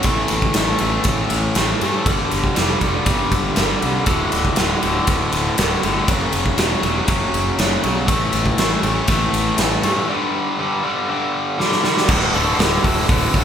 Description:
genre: quiet-loud alternative rock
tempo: 120 BPM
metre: 4/4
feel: straight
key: unclear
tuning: A4 = 438 Hz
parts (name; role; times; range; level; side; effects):
- biting overdriven guitar; riff; 0.0-13.4 s; D2 to A3; -19 LUFS; left 1 dB; spring reverb
- fuzz fingered electric bass; bass; 0.0-13.4 s; D1 to G2; -24 LUFS; equal; overdrive
- big rock drum kit; drums; 0.0-13.4 s; crash cymbal, hi-hat, kick drum, ride cymbal, snare drum; -19 LUFS; equal; none
room: moderate large studio reverb, RT60 1.4 s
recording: band playing live in one room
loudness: -16 LUFS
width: side -8 dB against mid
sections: 0.0-12.1 A section; 12.1-13.4 B section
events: drum fill 11.6-12.1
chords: 0.1 A5; 2.1 G5; 4.1 D5; 6.1 F#5; 8.1 A5; 10.1 G5; 12.1 D5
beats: | 0.07 0.57 1.07 1.57 | 2.08 2.58 3.08 3.58 | 4.08 4.58 5.09 5.59 | 6.09 6.59 7.09 7.59 | 8.09 8.59 9.10 9.60 | 10.10 10.60 11.10 11.60 | 12.10 12.60 13.10

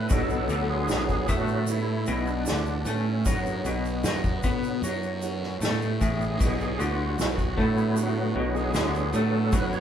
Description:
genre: psychedelic rock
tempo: 76 BPM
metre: 4/4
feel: straight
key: B dorian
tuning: A4 = 440 Hz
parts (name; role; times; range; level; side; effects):
- bright tonewheel organ; sustained chords; 0.0-9.8 s; D3 to C#5; -30 LUFS; right 1 dB; overdrive, chorus vibrato, fast rotary speaker
- electric guitar through a small old amp; riff; 0.0-9.8 s; A2 to B3; -29 LUFS; equal; tremolo
- fuzz fingered electric bass; bass; 0.0-9.8 s; A1 to B2; -30 LUFS; equal; overdrive
- soft-mallet drum kit; drums; 0.1-9.7 s; kick drum, ride cymbal, snare drum; -29 LUFS; equal; none
- tube shaker; percussion; 0.1-9.8 s; none; -43 LUFS; right 4 dB; none
room: moderate large studio reverb, RT60 0.9 s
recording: band playing live in one room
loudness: -24 LUFS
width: side -9 dB against mid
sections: 0.0-9.8 A section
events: tonewheel organ solo 0.0-9.8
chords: 0.0 Bm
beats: | 0.11 0.90 1.68 2.47 | 3.25 4.04 4.82 5.61 | 6.39 7.17 7.96 8.74 | 9.52

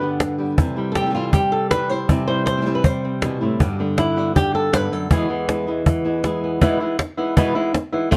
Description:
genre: flamenco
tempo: 159 BPM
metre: 4/4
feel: straight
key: unclear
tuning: A4 = 439 Hz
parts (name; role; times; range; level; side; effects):
- flamenco guitar; melody; 0.0-8.2 s; E2 to C5; -22 LUFS; equal; none
- flamenco guitar; stabs; 0.0-6.6 s; E2 to G4; -30 LUFS; equal; none
- cajon; percussion; 0.0-8.2 s; none; -20 LUFS; equal; none
room: light reverb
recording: dark, warm production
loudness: -20 LUFS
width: mono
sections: 0.0-6.6 A section; 6.6-8.2 B section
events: none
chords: 0.0 G; 0.6 C; 3.6 G; 5.1 E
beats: 0.21 | 0.59 0.96 1.34 1.72 | 2.10 2.47 2.85 3.23 | 3.60 3.98 4.36 4.73 | 5.11 5.49 5.86 6.24 | 6.62 6.99 7.37 7.75 | 8.12

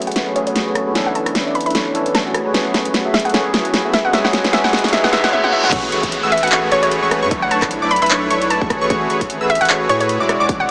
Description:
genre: future bass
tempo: 151 BPM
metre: 4/4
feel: swing 56% on 16ths, half-time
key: A major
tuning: A4 = 440 Hz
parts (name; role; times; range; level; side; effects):
- hollow square pluck; melody; 0.0-10.7 s; C#5 to B5; -20 LUFS; equal; chorus, sidechain pumping, tape echo
- overdriven tine electric piano; accompaniment; 0.0-5.7 s; E3 to A4; -24 LUFS; equal; sidechain pumping, dub echo
- saturated sub bass; bass; 0.0-10.7 s; E1 to A2; -31 LUFS; equal; sidechain pumping, high-pass filter
- big-room dance drum kit; drums; 0.0-10.7 s; crash cymbal, handclaps, hi-hat, rim click, snare drum, toms; -19 LUFS; equal; none
- riser, reverse cymbal and downlifter; sound effects; 3.9-8.9 s; none; -25 LUFS; equal; none
- soft supersaw; riff; 0.1-10.7 s; G#3 to F#5; -19 LUFS; equal; sidechain pumping, low-pass filter
- wide unison pluck; arpeggios; 5.7-10.7 s; C#6 to F#6; -22 LUFS; equal; sidechain pumping
- electronic kick drum; drums; 5.7-10.6 s; none; -24 LUFS; equal; none
room: moderate huge ambient reverb, RT60 7.3 s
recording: high-pass filter, small speaker sound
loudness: -14 LUFS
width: side -33 dB against mid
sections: 0.0-5.7 A section; 5.7-10.7 B section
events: build-up 0.0-5.7; drum fill 0.0-5.3, 5.3-5.7; filter sweep on supersaw synth 0.0-5.7; filter sweep on synth pluck 0.0-5.7; reverse cymbal 5.0-5.7; drop 5.7-10.7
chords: 0.0 Amaj13; 1.0 Bm11; 2.3 Amaj13; 3.9 E69; 5.7 Amaj13; 7.3 Bm11; 8.7 Amaj13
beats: 0.16 0.56 | 0.95 1.35 1.75 2.15 | 2.54 2.94 3.34 3.74 | 4.13 4.53 4.93 5.33 | 5.72 6.12 6.52 6.92 | 7.31 7.71 8.11 8.50 | 8.90 9.30 9.70 10.09 | 10.49

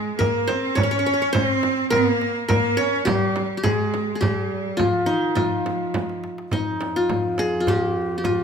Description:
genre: Arabic maqam ensemble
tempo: 104 BPM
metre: 3/4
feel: straight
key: F maqam bayati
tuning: A4 = 445 Hz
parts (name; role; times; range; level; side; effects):
- qanun; melody; 0.0-8.4 s; Eb4 to Db5; -23 LUFS; left 1 dB; none
- clear studio cello section; second line; 0.0-6.2 s; Eb3 to Db4; -24 LUFS; right 2 dB; none
- darbuka; percussion; 0.2-8.4 s; none; -29 LUFS; left 3 dB; none
- frame drum; percussion; 0.2-8.4 s; none; -27 LUFS; right 4 dB; none
- bright cello; drone; 6.5-8.4 s; F2; -33 LUFS; right 2 dB; none
room: moderate recital hall reverb, RT60 1.5 s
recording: minimal, uncompressed stereo recording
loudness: -19 LUFS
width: side -6 dB against mid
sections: 0.0-6.5 A section; 6.5-8.4 B section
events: drum fill 5.9-6.5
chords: none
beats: 0.20 0.78 | 1.35 1.93 2.50 | 3.08 3.65 4.22 | 4.80 5.37 5.95 | 6.52 7.10 7.67 | 8.25

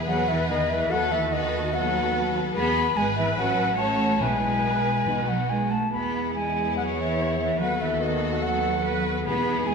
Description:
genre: quick classical-period movement for symphony orchestra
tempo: 144 BPM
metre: 4/4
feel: rubato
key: E major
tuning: A4 = 436 Hz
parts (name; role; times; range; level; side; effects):
- rich studio violin section; melody; 0.0-9.7 s; F#4 to B4; -37 LUFS; left 5 dB; none
- mellow concert flute; second line; 0.0-9.7 s; D#5 to B5; -26 LUFS; left 1 dB; none
- rich studio violin section; second line; 0.0-9.7 s; B3 to A4; -33 LUFS; left 2 dB; none
- rich studio viola section; accompaniment; 0.0-9.7 s; F#4 to C#5; -31 LUFS; right 1 dB; none
- dark studio double bass section; bass; 0.0-9.7 s; G#1 to E2; -31 LUFS; right 3 dB; none
- mellow French horn section; sustained chords; 0.1-9.7 s; B3 to A4; -33 LUFS; left 6 dB; none
- rich studio cello section; bass; 0.1-9.7 s; D#3 to B3; -29 LUFS; right 3 dB; none
- timpani; percussion; 4.2-5.7, 9.3-9.7 s; E2 to B2; -36 LUFS; equal; none
room: wet concert hall reverb, RT60 2.1 s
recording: minimal, uncompressed stereo recording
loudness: -22 LUFS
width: side -5 dB against mid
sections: 0.0-9.7 A section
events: none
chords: 0.0 E; 0.9 B7/D#; 2.6 E; 3.4 F#m/A; 4.2 E/B; 5.1 B; 5.9 E; 7.6 B7/D#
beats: 0.07 0.49 | 0.91 1.32 1.73 2.14 | 2.55 2.96 3.37 3.78 | 4.21 4.63 5.07 5.49 | 5.92 6.35 6.76 7.18 | 7.60 8.02 8.43 8.84 | 9.26 9.67

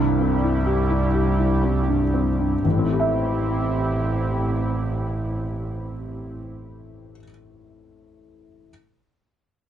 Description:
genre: neoclassical piano and strings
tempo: 58-67 BPM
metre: 3/4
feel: rubato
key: A minor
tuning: A4 = 436 Hz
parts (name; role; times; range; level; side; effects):
- felt-muted upright piano; accompaniment; 0.0-8.7 s; A1 to E5; -23 LUFS; left 1 dB; none
- warm analog pad; sustained chords; 0.0-6.4 s; G3 to G4; -29 LUFS; right 2 dB; chorus
- muted double bass; bass; 0.0-6.4 s; A1 to C2; -24 LUFS; right 1 dB; none
room: light reverb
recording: dark, warm production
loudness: -20 LUFS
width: side -10 dB against mid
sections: 0.0-2.6 A section; 2.6-5.7 B section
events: slowing down 0.0-2.6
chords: 0.0 C; 2.6 Am7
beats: 0.67 1.63 | 2.65 3.64 4.64

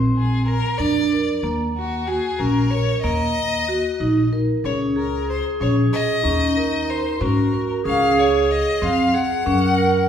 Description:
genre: contemporary instrumental, contemporary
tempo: 187 BPM (eighths)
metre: 5/8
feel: straight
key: Eb dorian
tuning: A4 = 442 Hz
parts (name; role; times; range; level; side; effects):
- vibraphone with medium hard mallets; arpeggios; 0.0-10.1 s; Bb3 to Bb4; -22 LUFS; right 1 dB; none
- upright bass; bass; 0.0-10.1 s; Bb1 to Ab2; -24 LUFS; equal; none
- clear violin; melody; 0.2-10.1 s; Gb4 to Gb5; -23 LUFS; left 3 dB; none
- dark clarinet; second line; 4.6-10.1 s; Eb4 to Bb4; -23 LUFS; right 3 dB; none
room: wet recital hall reverb, RT60 1.5 s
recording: recorded in a church or concert hall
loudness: -18 LUFS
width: side -8 dB against mid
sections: 0.0-4.6 A section; 4.6-10.1 B section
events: none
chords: 0.0 Bbadd9; 1.4 Ebm7; 3.0 Ebm; 4.6 Db5; 6.3 Ebm7; 7.9 Dbmaj7; 9.5 Gb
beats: 0.15 0.47 0.79 1.11 | 1.44 1.76 2.08 2.40 2.72 | 3.04 3.36 3.68 4.00 4.33 | 4.65 4.97 5.29 5.61 5.93 | 6.25 6.58 6.90 7.22 7.54 | 7.86 8.18 8.50 8.82 9.14 | 9.47 9.79

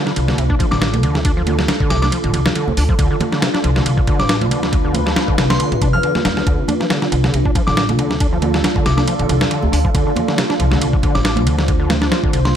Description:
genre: breakbeat, breaks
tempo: 138 BPM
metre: 4/4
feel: swing 55% on 16ths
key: D dorian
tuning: A4 = 440 Hz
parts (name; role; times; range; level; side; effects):
- deep dark ambient pad; sustained chords; 0.0-12.6 s; D4 to C5; -22 LUFS; equal; chorus, built-in reverb, sidechain pumping
- overdriven acid bass; riff; 0.0-12.5 s; C3 to D4; -22 LUFS; equal; distortion, digital delay
- dusty soul sampler-style drum kit; drums; 0.1-12.5 s; hi-hat, kick drum, ride cymbal, snare drum; -18 LUFS; equal; small room ambience
- upright bass; bass; 0.2-12.5 s; A1 to F2; -19 LUFS; equal; tube saturation
- congas; percussion; 0.3-12.5 s; none; -26 LUFS; right 4 dB; none
- glassy synth bell; melody; 0.7-12.5 s; C6 to F6; -25 LUFS; left 1 dB; chorus, phaser, small speaker sound, digital delay
room: light reverb, digital ambience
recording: none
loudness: -14 LUFS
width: side -9 dB against mid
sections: 0.0-12.6 A section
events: none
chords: 0.0 Dm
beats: 0.38 0.82 | 1.25 1.69 2.12 2.56 | 2.99 3.42 3.86 4.29 | 4.73 5.17 5.60 6.03 | 6.47 6.90 7.34 7.77 | 8.21 8.64 9.08 9.51 | 9.95 10.38 10.82 11.25 | 11.69 12.12 12.56

